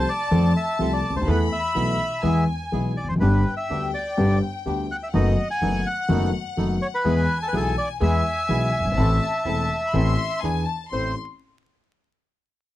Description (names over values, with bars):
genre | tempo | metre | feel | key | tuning
tango | 125 BPM | 4/4 | rubato | A harmonic minor | A4 = 439 Hz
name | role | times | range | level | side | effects
bandoneon | melody | 0.0-11.2 s | A4 to G#5 | -26 LUFS | equal | none
warm studio violin section | second line | 0.0-11.1 s | F#5 to C6 | -30 LUFS | left 4 dB | none
dark concert grand piano | accompaniment | 0.0-11.1 s | E1 to A4 | -23 LUFS | left 1 dB | none
bandoneon | stabs | 0.0-11.1 s | B3 to A4 | -32 LUFS | right 6 dB | none
upright bass | bass | 0.0-11.1 s | E1 to F2 | -26 LUFS | equal | none
room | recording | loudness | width
light reverb | dry, close 1970s-style studio recording, vinyl crackle | -20 LUFS | side -14 dB against mid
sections
0.0-10.9 A section; 10.9-12.8 B section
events
none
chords
0.0 F; 1.3 Esus4; 2.2 E; 3.2 G; 5.1 B7/F#; 7.1 E; 9.0 Am; 10.4 E7; 10.9 Am